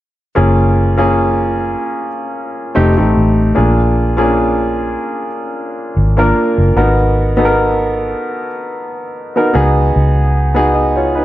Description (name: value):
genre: lush 1970s-style soul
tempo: 75 BPM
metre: 4/4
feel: swing 54% on 16ths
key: F# major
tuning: A4 = 436 Hz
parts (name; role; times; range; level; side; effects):
- warm baby grand piano; accompaniment; 0.4-11.2 s; A3 to D#5; -14 LUFS; equal; none
- vintage muted fingered electric bass; bass; 0.4-11.2 s; F1 to C#2; -14 LUFS; equal; none
room: light reverb, small room ambience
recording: none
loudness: -11 LUFS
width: side -14 dB against mid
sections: 0.4-11.2 A section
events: none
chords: 0.4 F#maj7; 2.8 F7; 3.6 A#7; 6.8 G#m7; 9.5 C#7sus4